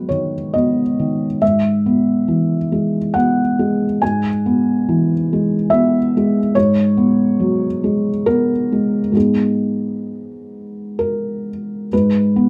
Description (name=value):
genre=neoclassical minimalist piano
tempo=64-72 BPM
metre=3/4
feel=rubato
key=unclear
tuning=A4 = 440 Hz
part: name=felt-muted upright piano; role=solo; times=0.0-12.5 s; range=G#2 to G#5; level=-17 LUFS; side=equal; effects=none
room=light reverb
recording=none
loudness=-17 LUFS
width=mono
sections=0.0-11.9 A section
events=none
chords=0.0 B/G#; 1.4 E/G#; 6.5 F#sus4/G#; 9.1 G#m